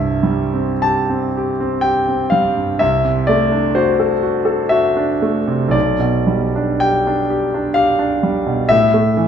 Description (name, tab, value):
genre	classical, romantic nocturne for solo piano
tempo	46-66 BPM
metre	3/4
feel	rubato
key	C major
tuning	A4 = 440 Hz
part	clear concert grand piano	solo	0.0-9.3 s	B1 to A5	-14 LUFS	equal	none
room	wet recital hall reverb, RT60 1.4 s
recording	none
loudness	-14 LUFS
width	side -8 dB against mid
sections	0.0-9.3 A section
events	none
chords	0.0 C; 2.8 D7/C; 5.7 G/B; 8.7 A5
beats	0.83 1.84 | 2.81 3.75 4.72 | 5.75 6.82 7.76 | 8.70